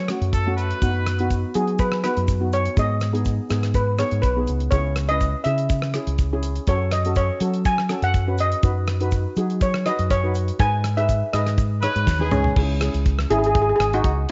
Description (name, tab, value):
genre	calypso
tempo	122 BPM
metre	4/4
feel	straight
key	C# minor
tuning	A4 = 440 Hz
part	steel pan	melody	0.0-14.3 s	G#3 to G#5	-26 LUFS	equal	none
part	deep dub fingered electric bass	bass	0.0-14.2 s	G#1 to F#3	-25 LUFS	equal	none
part	steel pan	accompaniment	0.1-13.9 s	A3 to C#5	-31 LUFS	equal	none
part	damped 70s drum kit	drums	0.1-14.3 s	crash cymbal, hi-hat, kick drum, rim click, snare drum, toms	-26 LUFS	equal	none
part	egg shaker	percussion	0.1-12.4 s	none	-51 LUFS	equal	none
part	clear trumpet	second line	0.3-1.4, 11.8-12.5 s	G#4 to B4	-29 LUFS	equal	none
room	moderate echo chamber reverb, RT60 1.4 s, small room ambience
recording	nothing above 7.7 kHz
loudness	-21 LUFS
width	mono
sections	0.0-12.6 A section; 12.6-14.3 B section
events	steel pan solo 0.0-12.6; drum fill 12.1-12.6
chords	0.0 F#m; 0.8 B/F#; 2.8 G#m; 4.7 C#m; 6.7 F#m; 8.6 Badd9/F#; 10.6 G#m; 12.6 C#m